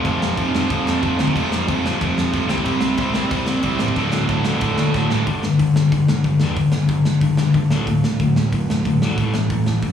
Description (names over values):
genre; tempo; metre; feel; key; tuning
punk rock; 184 BPM; 4/4; straight; unclear; A4 = 440 Hz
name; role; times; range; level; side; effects
distorted electric guitar; riff; 0.0-9.9 s; D2 to C4; -20 LUFS; left 5 dB; distortion, slapback echo
distorted electric guitar; riff; 0.0-5.2 s; D2 to C4; -25 LUFS; right 15 dB; overdrive, slapback echo
overdriven electric guitar; riff; 0.0-5.3 s; D2 to C4; -25 LUFS; right 4 dB; none
fuzz picked electric bass; bass; 0.0-9.9 s; D1 to F2; -23 LUFS; right 2 dB; overdrive
big rock drum kit; drums; 0.0-9.9 s; crash cymbal, hi-hat, kick drum, snare drum; -23 LUFS; right 1 dB; none
room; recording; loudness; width
little or no reverb; live gig heard through the venue's PA, club reverb, studio ambience; -16 LUFS; side -8 dB against mid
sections
0.0-5.3 A section; 5.3-9.9 B section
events
drum fill 4.9-5.3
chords
0.0 F5; 2.5 C5; 4.0 D5; 5.3 G5; 7.7 D5; 9.2 A5